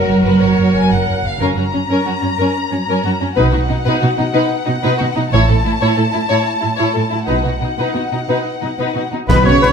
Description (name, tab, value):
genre	cinematic, heroic adventure film score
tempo	122 BPM (dotted quarters)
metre	12/8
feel	straight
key	F# major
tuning	A4 = 445 Hz
part	rich symphonic violin section	melody	0.0-9.7 s	F#4 to A#5	-23 LUFS	left 4 dB	none
part	rich symphonic violin section	second line	0.0-9.7 s	C#4 to G#5	-21 LUFS	left 4 dB	none
part	rich studio viola section	accompaniment	0.0-9.7 s	D#3 to A#4	-21 LUFS	equal	none
part	mellow French horn section	sustained chords	0.0-1.2, 9.3-9.7 s	B3 to C#5	-22 LUFS	left 2 dB	none
part	rich symphonic cello section	bass	0.0-9.7 s	F#2 to F#3	-18 LUFS	right 3 dB	none
part	rich symphonic double bass section	bass	0.1-9.7 s	F#1 to B1	-18 LUFS	right 2 dB	none
part	warm oboe	second line	9.3-9.7 s	B4 to C#5	-17 LUFS	right 2 dB	none
part	mellow trombone section	sustained chords	9.3-9.7 s	F#3 to B3	-21 LUFS	right 4 dB	none
part	mellow trumpet section	stabs	9.3-9.7 s	B4 to C#5	-19 LUFS	right 1 dB	none
part	concert snare drum, clash cymbals and concert bass drum	drums	9.3-9.7 s	none	-21 LUFS	left 2 dB	none
part	timpani	percussion	9.3-9.7 s	B2	-22 LUFS	equal	none
part	concert flute	second line	9.6-9.7 s	B5	-16 LUFS	left 4 dB	none
part	warm clarinet	second line	9.6-9.7 s	B4	-15 LUFS	left 3 dB	none
room	moderate recital hall reverb, RT60 1.5 s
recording	none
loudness	-13 LUFS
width	side -6 dB against mid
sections	0.0-1.4 A section; 1.4-9.3 B section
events	none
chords	0.0 F#; 3.4 B; 5.3 A; 7.3 B